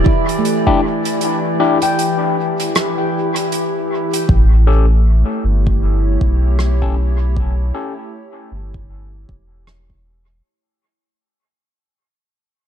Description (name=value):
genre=ambient dub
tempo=78 BPM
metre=4/4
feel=swing 58% on 16ths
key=unclear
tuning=A4 = 440 Hz
part: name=warbly tape-like pad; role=sustained chords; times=0.0-10.4 s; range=E3 to D5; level=-21 LUFS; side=left 1 dB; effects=chorus, built-in reverb
part: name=handpan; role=arpeggios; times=0.0-3.5 s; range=A3 to G5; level=-22 LUFS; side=right 2 dB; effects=tape echo
part: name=warm sub bass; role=bass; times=0.0-10.4 s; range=E1 to B1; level=-13 LUFS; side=equal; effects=none
part: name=electronic kick drum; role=drums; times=0.1-10.0 s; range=none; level=-17 LUFS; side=equal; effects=none
part: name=soft-mallet drum kit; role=drums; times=0.3-9.9 s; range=hi-hat, rim click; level=-24 LUFS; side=right 2 dB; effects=dub echo
part: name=overdriven tine electric piano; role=stabs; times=0.7-7.9 s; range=C#4 to A4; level=-21 LUFS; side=left 4 dB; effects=phaser, low-pass filter, dub echo
room=light reverb, studio reverb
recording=dark, warm production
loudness=-13 LUFS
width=side -9 dB against mid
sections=0.0-4.3 A section; 4.3-10.4 B section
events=break 1.2-4.3; fade-out 4.3-10.4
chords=0.0 Em7; 4.3 A7